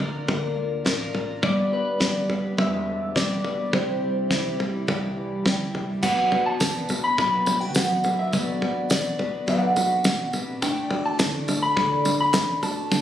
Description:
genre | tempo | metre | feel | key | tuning
indie folk with a building arrangement | 104 BPM | 4/4 | straight | unclear | A4 = 439 Hz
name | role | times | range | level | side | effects
fingerpicked steel-string acoustic guitar | accompaniment | 0.0-10.6 s | G2 to G4 | -31 LUFS | left 1 dB | none
picked twelve-string acoustic guitar | accompaniment | 0.0-13.0 s | G2 to D5 | -30 LUFS | left 3 dB | wide subtle chorus
upright bass | bass | 0.0-13.0 s | E1 to D3 | -31 LUFS | right 1 dB | none
cloth-damped thuddy drum kit | drums | 0.0-13.0 s | crash cymbal, kick drum, snare drum, toms | -25 LUFS | equal | none
electric guitar through a small old amp | melody | 1.4-13.0 s | B4 to B5 | -25 LUFS | equal | harmonic tremolo
tambourine | percussion | 6.0-13.0 s | none | -33 LUFS | right 2 dB | none
buzzing kalimba | arpeggios | 10.6-13.0 s | D4 to F#4 | -29 LUFS | right 1 dB | none
group handclap | percussion | 11.2-12.5 s | none | -35 LUFS | right 1 dB | none
room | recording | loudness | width
light reverb, studio reverb | recorded on a phone in the room, compression | -21 LUFS | side -10 dB against mid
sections
0.0-6.0 A section; 6.0-13.0 B section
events
none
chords
0.0 Bb/D; 1.4 G; 3.7 Cadd9; 6.0 Bm; 10.6 Dsus2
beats
0.29 0.86 | 1.44 2.01 2.58 3.16 | 3.73 4.31 4.88 5.46 | 6.03 6.60 7.18 7.75 | 8.33 8.90 9.47 10.05 | 10.62 11.20 11.77 12.34 | 12.91

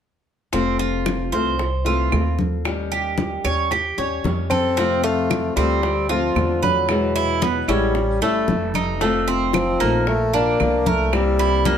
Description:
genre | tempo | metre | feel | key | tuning
latin, Cuban son and guajira | 113 BPM | 4/4 | straight | F major | A4 = 440 Hz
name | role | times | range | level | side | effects
flamenco guitar | accompaniment | 0.5-11.8 s | B2 to G4 | -24 LUFS | left 5 dB | none
Cuban tres | arpeggios | 0.5-11.8 s | A3 to Db5 | -23 LUFS | right 6 dB | none
upright bass | bass | 0.5-11.8 s | F1 to F2 | -25 LUFS | right 1 dB | none
bongos | percussion | 0.5-11.8 s | none | -30 LUFS | left 4 dB | none
congas | percussion | 0.5-11.8 s | none | -27 LUFS | left 2 dB | none
claves | percussion | 1.1-11.4 s | none | -30 LUFS | right 8 dB | none
mellow bassoon | melody | 4.5-11.8 s | F3 to C4 | -22 LUFS | left 2 dB | plate reverb, tape echo
room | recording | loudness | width
light reverb | none | -18 LUFS | side -8 dB against mid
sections
0.5-4.8 A section; 4.8-11.8 B section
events
none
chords
0.5 Fmaj7; 2.7 Eb7; 4.8 F; 5.8 Dm7; 6.9 E; 7.9 A7; 9.0 F7; 10.1 Bb; 11.1 C7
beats
| 0.53 1.06 1.59 2.12 | 2.65 3.18 3.71 4.24 | 4.77 5.30 5.83 6.36 | 6.89 7.42 7.95 8.48 | 9.01 9.54 10.07 10.60 | 11.13 11.66

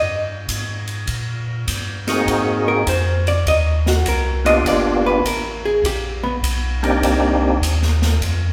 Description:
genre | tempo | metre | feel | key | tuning
soul jazz organ trio | 101 BPM | 4/4 | swing 67% on 8ths | C minor | A4 = 440 Hz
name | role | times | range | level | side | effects
hollow-body jazz guitar | accompaniment | 0.0-6.4 s | B3 to Eb5 | -22 LUFS | equal | none
tonewheel organ | bass | 0.0-8.5 s | G1 to Bb2 | -23 LUFS | equal | slow rotary speaker
swinging big-band drum kit | drums | 0.5-8.4 s | hi-hat, kick drum, ride cymbal, snare drum | -28 LUFS | equal | none
percussive tonewheel organ | melody | 2.1-7.6 s | Bb3 to Ab4 | -21 LUFS | equal | slow rotary speaker, overdrive, chorus vibrato
room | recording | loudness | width
wet large studio reverb, RT60 1.4 s | band playing live in one room | -19 LUFS | mono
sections
0.0-8.5 A section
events
hollow-body jazz guitar solo 0.0-8.5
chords
0.0 C7(no3) (rootless); 2.3 Ab7; 4.6 G7#9; 7.0 Cm7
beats
0.49 1.09 1.68 | 2.27 2.87 3.46 4.05 | 4.65 5.24 5.83 6.43 | 7.02 7.62 8.21

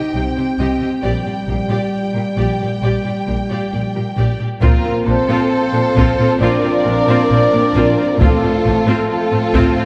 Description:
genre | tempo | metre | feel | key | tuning
cinematic, epic orchestral film score | 67 BPM | 4/4 | straight | unclear | A4 = 439 Hz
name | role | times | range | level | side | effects
warm symphonic violin section | melody | 0.0-9.9 s | F4 to G5 | -26 LUFS | equal | none
rich symphonic violin section | second line | 0.0-9.9 s | A4 to Eb5 | -31 LUFS | equal | none
bright symphonic viola section | accompaniment | 0.0-9.8 s | A3 to G4 | -25 LUFS | equal | none
warm French horn section | sustained chords | 0.1-9.9 s | G3 to D4 | -24 LUFS | equal | none
clear symphonic double bass section | bass | 0.1-9.6 s | A1 to C2 | -24 LUFS | equal | none
clear symphonic cello section | bass | 0.2-9.8 s | A2 to C3 | -24 LUFS | equal | none
mellow concert flute | second line | 4.6-9.9 s | A4 to D5 | -27 LUFS | equal | none
dark woodwind section | sustained chords | 4.6-9.9 s | C4 to F5 | -29 LUFS | equal | none
mellow trombone section | sustained chords | 4.6-9.9 s | F3 to C4 | -28 LUFS | equal | none
dark trumpet section | stabs | 4.6-9.9 s | A4 to D5 | -23 LUFS | equal | none
taiko ensemble | drums | 4.6-9.9 s | none | -21 LUFS | equal | none
room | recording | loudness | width
wet concert hall reverb, RT60 2.5 s | dark, warm production | -16 LUFS | mono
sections
0.0-4.6 A section; 4.6-9.9 A section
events
none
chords
0.0 Cm; 1.0 Gm/Bb; 4.6 Bbadd9; 8.2 F/A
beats
0.14 | 1.04 1.94 2.83 3.73 | 4.62 5.52 6.41 7.31 | 8.20 9.10

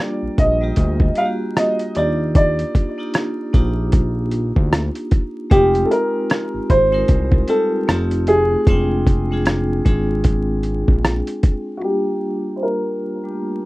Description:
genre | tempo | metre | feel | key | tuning
lo-fi hip hop | 76 BPM | 4/4 | swing 59% on 16ths | F dorian | A4 = 443 Hz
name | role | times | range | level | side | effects
dark upright piano | melody | 0.0-13.7 s | Gb4 to F5 | -19 LUFS | equal | low-pass filter
vibraphone with hard mallets | accompaniment | 0.0-13.7 s | G3 to G5 | -23 LUFS | equal | cassette tape, low-pass filter
smooth synth bass | bass | 0.2-11.2 s | F1 to Eb2 | -21 LUFS | equal | none
dusty soul sampler-style drum kit | drums | 0.4-11.6 s | hi-hat, kick drum, rim click | -16 LUFS | equal | overdrive, vintage 12-bit sampler grit
room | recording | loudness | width
light reverb | rough home demo mix, vinyl crackle | -16 LUFS | side -19 dB against mid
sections
0.0-11.8 A section; 11.8-13.7 B section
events
none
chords
0.0 Gm7; 2.0 Ebmaj9; 5.5 Fm9; 7.9 F9; 8.7 Fm69; 11.8 Gm7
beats
0.77 1.56 | 2.35 3.14 3.93 4.72 | 5.51 6.30 7.09 7.88 | 8.67 9.46 10.25 11.04 | 11.83 12.62 13.40

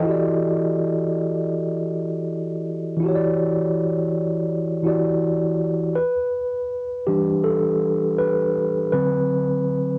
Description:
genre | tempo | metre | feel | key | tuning
hip hop | 81 BPM | 4/4 | swing 57% on 16ths | E minor | A4 = 440 Hz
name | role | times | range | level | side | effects
mellow tine electric piano | solo | 0.0-10.0 s | D3 to Eb5 | -22 LUFS | equal | low-pass filter, cassette tape
room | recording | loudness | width
light reverb | home recording on cassette | -22 LUFS | mono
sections
0.0-6.0 A section; 6.0-10.0 B section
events
tine electric piano solo 6.0-10.0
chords
0.0 Em9; 6.0 Em7; 8.9 D6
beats
| 0.04 0.78 1.52 2.26 | 3.00 3.74 4.48 5.22 | 5.96 6.70 7.44 8.18 | 8.93 9.67

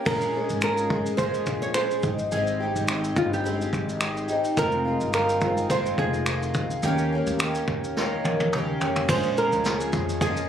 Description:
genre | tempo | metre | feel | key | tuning
acoustic pop | 106 BPM | 4/4 | swing 55% on 16ths | unclear | A4 = 440 Hz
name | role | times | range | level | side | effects
picked twelve-string acoustic guitar | accompaniment | 0.0-10.5 s | F2 to Ab4 | -27 LUFS | left 1 dB | double-tracked left and right
nylon-string guitar | melody | 0.1-10.5 s | F4 to Db5 | -27 LUFS | right 2 dB | tape echo
upright bass | bass | 0.1-10.4 s | F1 to F2 | -30 LUFS | equal | none
vintage brush drum kit | drums | 0.1-10.5 s | crash cymbal, finger snaps, kick drum, shaker, snare drum, toms | -29 LUFS | equal | none
room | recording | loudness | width
moderate studio reverb, RT60 0.5 s | recorded on a phone in the room, club reverb, compression | -22 LUFS | side -9 dB against mid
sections
0.1-9.1 A section; 9.1-10.5 B section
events
drum fill 8.0-9.1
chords
0.1 Bbm7; 2.0 Abmaj7; 4.6 Fm7; 6.8 Eb7; 9.1 Bbm7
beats
| 0.06 0.62 1.19 1.75 | 2.32 2.88 3.45 4.01 | 4.57 5.14 5.70 6.26 | 6.83 7.39 7.96 8.52 | 9.08 9.64 10.21

